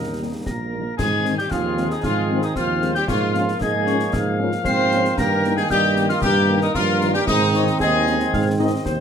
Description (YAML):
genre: military-style march for wind band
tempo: 114 BPM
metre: 2/4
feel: straight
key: Ab major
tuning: A4 = 443 Hz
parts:
  - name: dark trumpet section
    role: melody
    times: 0.0-8.6 s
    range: Eb4 to C5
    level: -24 LUFS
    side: left 2 dB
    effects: none
  - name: mellow euphonium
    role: second line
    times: 0.0-8.6 s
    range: Eb3 to Eb4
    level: -27 LUFS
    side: right 5 dB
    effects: none
  - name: warm woodwind section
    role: second line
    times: 0.0-9.0 s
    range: Eb4 to G5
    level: -28 LUFS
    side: left 2 dB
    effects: none
  - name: mellow trombone section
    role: sustained chords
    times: 0.0-9.0 s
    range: Eb3 to C4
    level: -27 LUFS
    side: equal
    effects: none
  - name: warm tuba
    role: bass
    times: 0.0-9.0 s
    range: Bb1 to Ab2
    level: -23 LUFS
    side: right 3 dB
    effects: none
  - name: dark French horn section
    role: accompaniment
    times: 0.2-8.7 s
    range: Eb3 to Eb4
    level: -28 LUFS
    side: left 6 dB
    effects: none
  - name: piccolo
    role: second line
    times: 0.5-8.6 s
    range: Eb6 to C7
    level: -26 LUFS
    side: left 4 dB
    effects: none
  - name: concert snare drum, concert bass drum and clash cymbals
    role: drums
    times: 0.5-9.0 s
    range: none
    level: -30 LUFS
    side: left 1 dB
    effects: none
room: moderate large studio reverb, RT60 0.9 s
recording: close, detailed microphones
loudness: -17 LUFS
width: side -8 dB against mid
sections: 1.0-9.0 A section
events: none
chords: 0.0 Eb; 1.0 Ab; 3.1 Bbm7/Ab; 5.2 Eb/G; 7.3 Ab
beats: 0.46 | 0.99 1.51 | 2.04 2.56 | 3.09 3.61 | 4.14 4.66 | 5.19 5.71 | 6.24 6.76 | 7.29 7.81 | 8.34 8.86